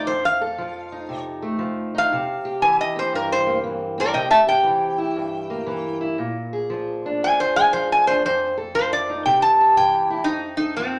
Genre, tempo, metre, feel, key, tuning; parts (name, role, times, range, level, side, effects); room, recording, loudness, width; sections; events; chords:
acoustic country blues, solo or duo; 118 BPM; 4/4; swing 65% on 8ths; A4 = 440 Hz
metal-body resonator slide guitar; melody; 0.0-11.0 s; C4 to A5; -20 LUFS; equal
fingerpicked steel-string acoustic guitar; accompaniment; 0.0-11.0 s; F2 to A4; -28 LUFS; equal
wet large studio reverb, RT60 1.2 s; -21 LUFS; mono
0.0-10.3 A section
resonator guitar played with a steel bar solo 0.0-10.3
0.0 F7; 2.1 C7; 6.2 Bb7; 8.2 F7; 9.2 C; 10.3 F7